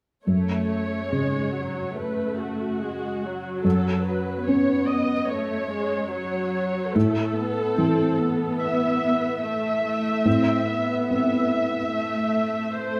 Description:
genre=cinematic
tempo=72 BPM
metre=4/4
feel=rubato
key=F# minor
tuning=A4 = 439 Hz
part: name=dark symphonic viola section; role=accompaniment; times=0.3-13.0 s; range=F#3 to E5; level=-26 LUFS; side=equal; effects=none
part: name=felt-muted upright piano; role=accompaniment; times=0.3-13.0 s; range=F#2 to C#4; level=-28 LUFS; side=equal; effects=none
room=moderate scoring stage reverb, RT60 1.9 s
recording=close, detailed microphones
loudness=-24 LUFS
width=mono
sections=0.3-13.0 A section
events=none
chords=0.3 F#m; 7.0 Am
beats=| 0.27 1.13 1.98 2.82 | 3.65 4.48 5.30 6.13 | 6.96 7.78 8.60 9.43 | 10.26 11.10 11.95 12.81

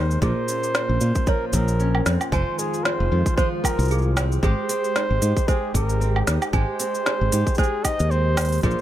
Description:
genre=folktronica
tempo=114 BPM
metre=4/4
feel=swing 56% on 16ths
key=Ab major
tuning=A4 = 440 Hz
part: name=mellow flugelhorn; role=melody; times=0.0-8.8 s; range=Ab4 to Eb5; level=-27 LUFS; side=right 1 dB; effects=ping-pong delay
part: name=warm analog pad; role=sustained chords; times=0.0-8.8 s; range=Eb3 to G4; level=-32 LUFS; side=right 2 dB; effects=chorus
part: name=flamenco guitar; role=arpeggios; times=0.0-8.8 s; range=F2 to G4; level=-30 LUFS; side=equal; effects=none
part: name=modern bright fingered electric bass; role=bass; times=0.0-8.7 s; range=F1 to Bb2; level=-21 LUFS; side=equal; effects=none
part: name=organic electronic drum kit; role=drums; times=0.1-8.8 s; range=hi-hat, shaker, snare drum, woodblock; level=-26 LUFS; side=right 1 dB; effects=overdrive
part: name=toy piano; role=second line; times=0.2-8.8 s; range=Ab4 to Ab5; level=-32 LUFS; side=right 4 dB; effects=ping-pong delay
part: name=electronic kick drum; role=drums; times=0.2-8.8 s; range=none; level=-22 LUFS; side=equal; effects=overdrive
room=little or no reverb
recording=none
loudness=-19 LUFS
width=side -12 dB against mid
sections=0.0-8.8 A section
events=none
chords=0.2 Bbmadd9; 2.3 Fm7; 4.4 Abmaj7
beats=| 0.22 0.74 1.27 1.80 | 2.32 2.85 3.38 3.90 | 4.43 4.96 5.48 6.01 | 6.53 7.06 7.59 8.11 | 8.64

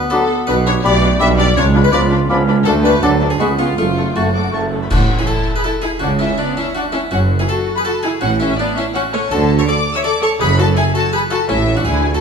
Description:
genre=cinematic, playful, whimsical film cue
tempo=164 BPM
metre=3/4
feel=straight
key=F# minor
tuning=A4 = 440 Hz
part: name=harpsichord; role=melody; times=0.0-12.2 s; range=C#4 to E5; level=-22 LUFS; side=left 1 dB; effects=none
part: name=clear clarinet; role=second line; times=0.0-4.7 s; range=F#3 to E#4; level=-23 LUFS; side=left 2 dB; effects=none
part: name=clear studio violin section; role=melody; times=0.1-12.2 s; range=C#5 to E6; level=-25 LUFS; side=left 5 dB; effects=none
part: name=mellow hollow concert flute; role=second line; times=0.1-4.6 s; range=C#6 to D6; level=-27 LUFS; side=left 4 dB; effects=none
part: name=warm oboe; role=second line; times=0.1-4.7 s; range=A5 to B5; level=-27 LUFS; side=equal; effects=none
part: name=warm studio violin section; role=second line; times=0.1-12.2 s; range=E#4 to E6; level=-22 LUFS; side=left 4 dB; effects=none
part: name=mellow bassoon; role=accompaniment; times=0.1-4.7 s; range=E#3 to A3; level=-25 LUFS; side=right 1 dB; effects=none
part: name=rich studio viola section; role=accompaniment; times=0.1-12.2 s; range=A3 to C#5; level=-21 LUFS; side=left 1 dB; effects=none
part: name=warm French horn section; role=sustained chords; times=0.1-4.7 s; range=A3 to A4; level=-27 LUFS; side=left 4 dB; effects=none
part: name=mellow tuba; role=bass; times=0.5-12.2 s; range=F#1 to D2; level=-21 LUFS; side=right 3 dB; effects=none
part: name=rich studio cello section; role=bass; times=0.5-12.2 s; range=C#2 to D3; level=-21 LUFS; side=right 2 dB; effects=none
part: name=warm studio double bass section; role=bass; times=0.5-12.2 s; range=F#1 to D2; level=-21 LUFS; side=right 3 dB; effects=none
part: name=cymbal swell, clash cymbals and concert bass drum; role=percussion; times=2.7-5.6 s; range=none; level=-22 LUFS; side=left 1 dB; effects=none
room=moderate scoring stage reverb, RT60 1.6 s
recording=dark, warm production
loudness=-13 LUFS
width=side -6 dB against mid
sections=0.0-4.9 A section; 4.9-12.2 B section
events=band accent 4.9-5.3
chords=0.5 G/B; 1.6 C#7b9; 2.7 D; 3.4 C#7; 3.8 F#m; 4.9 F#m11/A; 6.0 Dmaj13/C#; 7.1 F#madd9; 8.2 A69; 9.3 Dmaj7(no3); 10.4 F#madd9; 11.5 A5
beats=0.12 | 0.48 0.84 1.21 | 1.57 1.93 2.30 | 2.66 3.03 3.40 | 3.78 4.15 4.53 | 4.91 5.28 5.65 | 6.02 6.39 6.76 | 7.12 7.49 7.86 | 8.22 8.59 8.95 | 9.31 9.68 10.04 | 10.40 10.77 11.13 | 11.49 11.86

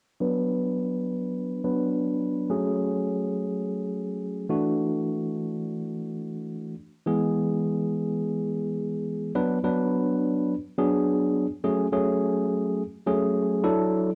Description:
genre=pop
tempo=105 BPM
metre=4/4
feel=straight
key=unclear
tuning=A4 = 440 Hz
part: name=tine electric piano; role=accompaniment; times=0.2-14.1 s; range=E3 to B4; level=-27 LUFS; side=equal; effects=low-pass filter, cassette tape
room=wet small room reverb, RT60 0.6 s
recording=home recording on cassette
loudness=-27 LUFS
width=mono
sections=0.2-9.4 A section; 9.4-14.2 B section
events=filter sweep on tine electric piano 0.2-9.4; build-up 9.4-14.2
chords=0.2 Bm; 2.5 F#madd9; 4.5 Dadd9; 7.1 E; 9.4 Bm; 11.6 F#madd9; 13.6 Dadd9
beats=| 0.21 0.78 1.35 1.93 | 2.50 3.07 3.64 4.21 | 4.78 5.35 5.92 6.50 | 7.07 7.64 8.21 8.78 | 9.35 9.93 10.50 11.07 | 11.64 12.21 12.78 13.35 | 13.93

